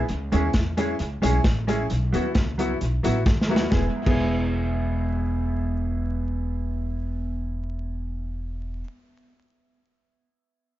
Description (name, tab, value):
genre	ska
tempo	132 BPM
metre	4/4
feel	straight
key	E major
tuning	A4 = 441 Hz
part	clear upright piano	stabs	0.0-8.8 s	B3 to G#4	-29 LUFS	left 2 dB	none
part	upright bass	bass	0.0-8.8 s	E1 to E2	-27 LUFS	equal	none
part	crunchy breakbeat drum kit	drums	0.1-4.2 s	crash cymbal, hi-hat, kick drum, snare drum	-24 LUFS	equal	dub echo
part	mellow electric guitar	accompaniment	0.3-8.9 s	F#3 to E4	-29 LUFS	right 2 dB	dub echo
room	light reverb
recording	vinyl crackle, nothing above 7.6 kHz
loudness	-22 LUFS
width	side -14 dB against mid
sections	0.0-3.7 A section; 3.7-7.3 B section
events	drum fill 3.3-3.7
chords	0.1 C#m; 1.9 Bsus4; 3.7 E